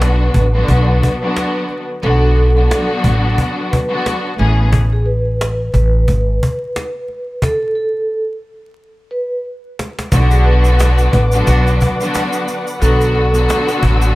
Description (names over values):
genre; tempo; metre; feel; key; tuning
hip hop, boom-bap hip-hop; 89 BPM; 4/4; swing 57% on 16ths; unclear; A4 = 440 Hz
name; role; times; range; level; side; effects
vibraphone with soft mallets; melody; 0.0-13.7 s; G#4 to B4; -20 LUFS; right 1 dB; high-pass filter, low-pass filter, tape echo
warm studio string section; accompaniment; 0.0-4.7, 10.1-14.2 s; D3 to G#4; -18 LUFS; left 1 dB; high-pass filter, low-pass filter
upright bass; bass; 0.0-14.1 s; G#1 to B1; -13 LUFS; equal; none
cajon; drums; 0.0-14.0 s; none; -18 LUFS; equal; none
muted studio string section; sustained chords; 10.1-14.2 s; B4 to E6; -26 LUFS; left 1 dB; high-pass filter, low-pass filter
tube shaker; percussion; 10.1-14.2 s; none; -33 LUFS; right 4 dB; none
warm trumpet section; stabs; 11.5-11.7 s; B3 to F#4; -25 LUFS; right 1 dB; high-pass filter, low-pass filter, tape echo
room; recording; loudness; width
small room ambience; vinyl crackle; -12 LUFS; side -19 dB against mid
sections
0.0-10.1 A section; 10.1-14.2 B section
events
break 4.7-10.1; stop 7.4-10.1; drum fill 8.8-10.1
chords
0.0 Bm; 4.4 Amaj7(no3); 10.1 Bm